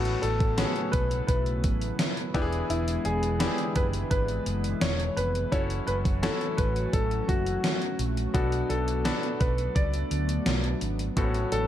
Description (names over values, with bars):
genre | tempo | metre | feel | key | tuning
1980s-style pop | 85 BPM | 4/4 | straight | F# minor | A4 = 440 Hz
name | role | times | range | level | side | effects
warm grand piano | melody | 0.0-11.7 s | E4 to D5 | -31 LUFS | left 1 dB | none
bright grand piano | accompaniment | 0.0-11.7 s | A2 to A4 | -34 LUFS | left 3 dB | none
chorused pulse-width pad | sustained chords | 0.0-11.7 s | C#3 to F#4 | -34 LUFS | equal | none
hollow-body short-scale fingered electric bass | bass | 0.0-11.7 s | E1 to D2 | -30 LUFS | equal | none
gated 80s digital drum machine | drums | 0.1-11.7 s | hi-hat, kick drum, snare drum | -28 LUFS | equal | gated reverb, gated reverb snare, overdrive
room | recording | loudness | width
light reverb, digital ambience | dark, warm production | -25 LUFS | side -11 dB against mid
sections
0.0-11.7 A section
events
none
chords
0.0 A69; 2.3 E7; 5.5 F#m7; 8.3 Bm7; 11.2 A69